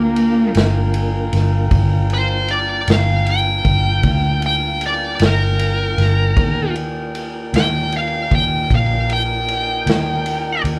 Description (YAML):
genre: slow blues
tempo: 52 BPM (dotted quarters)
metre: 12/8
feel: straight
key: G minor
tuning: A4 = 435 Hz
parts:
  - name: smooth overdriven lead guitar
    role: melody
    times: 0.0-10.6 s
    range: Bb3 to G5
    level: -21 LUFS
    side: equal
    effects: none
  - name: mellow horn section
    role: sustained chords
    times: 0.0-10.8 s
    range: Eb4 to Bb5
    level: -32 LUFS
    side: equal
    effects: none
  - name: mellow tonewheel organ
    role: sustained chords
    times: 0.0-10.8 s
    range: F#3 to D5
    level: -31 LUFS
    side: equal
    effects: chorus vibrato, fast rotary speaker
  - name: vintage muted fingered electric bass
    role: bass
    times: 0.0-10.8 s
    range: G1 to Eb2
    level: -21 LUFS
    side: equal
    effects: none
  - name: vintage drum kit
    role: drums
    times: 0.2-10.8 s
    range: kick drum, ride cymbal, snare drum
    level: -24 LUFS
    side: equal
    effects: none
room: moderate studio ambience, RT60 0.5 s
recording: band playing live in one room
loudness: -17 LUFS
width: mono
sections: 0.0-10.8 A section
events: lead electric guitar solo 0.0-10.8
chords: 0.0 Gm7; 6.4 Ebmaj7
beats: 0.56 | 1.72 2.88 4.04 5.21 | 6.37 7.54 8.70 9.86